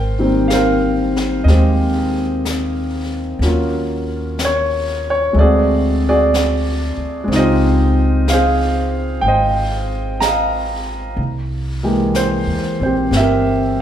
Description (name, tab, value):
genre	jazz ballad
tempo	62 BPM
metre	4/4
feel	swing 68% on 8ths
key	Ab major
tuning	A4 = 440 Hz
part	warm concert grand piano	accompaniment	0.0-13.8 s	Eb3 to Bb5	-16 LUFS	equal	none
part	upright bass	bass	0.0-13.8 s	G1 to E2	-19 LUFS	equal	none
part	jazz brush drum kit	drums	0.5-13.8 s	brushed snare drum, hi-hat, snare drum	-27 LUFS	left 3 dB	none
room	moderate recital hall reverb, RT60 1.4 s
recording	recorded in a church or concert hall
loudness	-14 LUFS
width	side -10 dB against mid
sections	0.0-13.8 A section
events	none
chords	0.0 Abmaj9; 3.4 Ebm7; 5.4 D7#11; 7.3 Dbmaj9#11; 11.2 C7b13